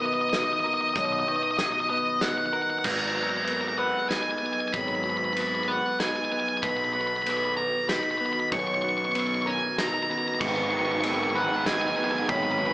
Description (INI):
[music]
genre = post-rock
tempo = 95 BPM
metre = 3/4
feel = straight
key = G# minor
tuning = A4 = 440 Hz
[part]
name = octave-fuzz lead guitar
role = melody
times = 0.0-12.7 s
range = D#5 to C#6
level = -26 LUFS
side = equal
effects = distortion
[part]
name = glassy FM pad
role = sustained chords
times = 0.0-12.7 s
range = D#3 to A#5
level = -40 LUFS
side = equal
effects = ensemble chorus, built-in reverb
[part]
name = clean electric guitar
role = arpeggios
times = 0.0-12.7 s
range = G#2 to B4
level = -32 LUFS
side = left 1 dB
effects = none
[part]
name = vibraphone with medium hard mallets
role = arpeggios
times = 0.0-12.7 s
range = A#4 to D#5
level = -35 LUFS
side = right 2 dB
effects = none
[part]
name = loose indie drum kit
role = drums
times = 0.3-12.4 s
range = crash cymbal, hi-hat, kick drum, ride cymbal, snare drum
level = -32 LUFS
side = equal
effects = none
[part]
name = fuzz fingered electric bass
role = bass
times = 1.0-12.7 s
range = G#1 to B1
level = -36 LUFS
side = equal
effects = overdrive
[part]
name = thick fuzz guitar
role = riff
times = 10.4-12.7 s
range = G#2 to D#3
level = -29 LUFS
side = right 3 dB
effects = distortion
[sound]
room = moderate large studio reverb, RT60 0.8 s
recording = band playing live in one room, small speaker sound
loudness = -24 LUFS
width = side -18 dB against mid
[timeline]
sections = 0.0-2.8 A section; 2.8-12.7 B section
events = build-up 2.8-12.7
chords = 0.0 Bmaj7; 2.8 G#m7; 6.6 Bmaj7; 10.4 G#m7